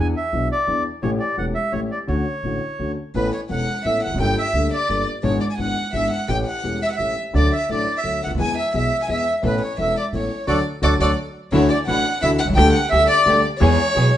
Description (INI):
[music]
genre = tango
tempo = 172 BPM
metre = 3/4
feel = rubato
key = D major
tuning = A4 = 440 Hz
[part]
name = bandoneon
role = melody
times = 0.0-14.2 s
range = A4 to G#5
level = -23 LUFS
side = equal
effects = none
[part]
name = warm concert grand piano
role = accompaniment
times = 0.0-14.1 s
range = E1 to A4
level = -23 LUFS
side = left 2 dB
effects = none
[part]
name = upright bass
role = bass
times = 0.0-14.1 s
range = E1 to E2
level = -23 LUFS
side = right 1 dB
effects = none
[part]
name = warm violin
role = second line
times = 3.1-14.2 s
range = B4 to G#5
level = -24 LUFS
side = left 1 dB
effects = none
[part]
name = clear clarinet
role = second line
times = 10.5-11.1 s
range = F#4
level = -29 LUFS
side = right 3 dB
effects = none
[part]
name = muted studio string section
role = stabs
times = 11.5-14.1 s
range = F#3 to G#4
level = -27 LUFS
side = right 1 dB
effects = none
[sound]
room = wet stone room reverb, RT60 0.9 s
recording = band playing live in one room, nothing above 10.6 kHz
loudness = -18 LUFS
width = side -12 dB against mid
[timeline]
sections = 0.0-11.5 A section; 11.5-14.2 B section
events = band accent 10.5-11.5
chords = 0.0 E7; 1.0 A7; 2.1 Dmaj7; 3.1 Aadd9; 4.2 Gmadd9; 5.2 E7/G#; 6.3 A7; 7.3 D; 8.4 E; 9.4 Aadd9; 10.5 D; 11.5 Dadd9; 12.6 Gsus2/D; 13.6 E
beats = 0.32 0.67 | 1.02 1.37 1.72 | 2.08 2.43 2.78 | 3.13 3.49 3.84 | 4.19 4.54 4.89 | 5.24 5.58 5.93 | 6.28 6.63 6.98 | 7.34 7.69 8.04 | 8.39 8.74 9.08 | 9.43 9.78 10.12 | 10.47 10.82 11.18 | 11.53 11.88 12.23 | 12.57 12.92 13.26 | 13.61 13.95